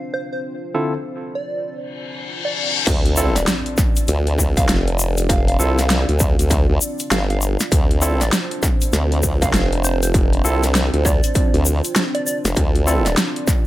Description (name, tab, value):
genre	glitch hop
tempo	99 BPM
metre	4/4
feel	swing 62% on 16ths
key	D minor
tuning	A4 = 440 Hz
part	dark analog pad	sustained chords	0.0-13.7 s	C4 to D5	-28 LUFS	right 1 dB	chorus, sidechain pumping
part	plucky unison lead	melody	0.1-13.1 s	C5 to F5	-28 LUFS	right 1 dB	dub echo
part	barky tine electric piano	stabs	0.7-13.1 s	D3 to A4	-24 LUFS	right 1 dB	medium stereo tremolo, vintage 12-bit sampler grit, sidechain pumping, dub echo
part	reverse cymbal and impact	sound effects	2.0-5.3 s	none	-24 LUFS	left 3 dB	none
part	formant-sweep wobble bass	bass	2.9-13.2 s	F1 to D2	-18 LUFS	equal	chorus
part	dubstep drum kit	drums	2.9-13.6 s	crash cymbal, hi-hat, snare drum	-22 LUFS	equal	small room ambience
part	electronic kick drum	drums	2.9-13.6 s	none	-18 LUFS	equal	distortion, small room ambience
part	egg shaker	percussion	2.9-13.6 s	none	-25 LUFS	left 4 dB	none
room	digital ambience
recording	none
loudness	-16 LUFS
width	side -16 dB against mid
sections	0.0-2.9 A section; 2.9-13.7 B section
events	filter sweep on tine electric piano 0.0-2.9; reverse cymbal 2.0-2.9; drop 2.9-13.7; impact 2.9-5.3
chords	0.0 Dm7